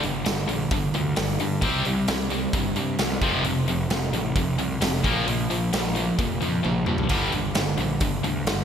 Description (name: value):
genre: hard rock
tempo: 132 BPM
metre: 4/4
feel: straight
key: G minor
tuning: A4 = 440 Hz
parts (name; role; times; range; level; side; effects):
- tight distorted guitar; riff; 0.0-8.6 s; F2 to C4; -27 LUFS; left 7 dB; distortion
- tight distorted guitar; riff; 0.0-8.6 s; F2 to C4; -28 LUFS; right 8 dB; distortion
- fuzz picked electric bass; bass; 0.0-8.6 s; F1 to G2; -29 LUFS; equal; overdrive
- big rock drum kit; drums; 0.0-8.6 s; hi-hat, kick drum, snare drum, splash cymbal, toms; -27 LUFS; right 1 dB; gated reverb
room: moderate lush hall reverb, RT60 2.2 s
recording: bright 1980s-style digital production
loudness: -22 LUFS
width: side -8 dB against mid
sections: 0.0-8.6 A section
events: drum fill 6.6-7.1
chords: 0.0 G5; 1.6 C5; 3.2 F5; 5.0 Bb5; 7.1 Gm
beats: 0.25 0.71 1.16 | 1.62 2.07 2.53 2.99 | 3.44 3.90 4.36 4.81 | 5.27 5.73 6.18 6.64 | 7.10 7.55 8.01 8.46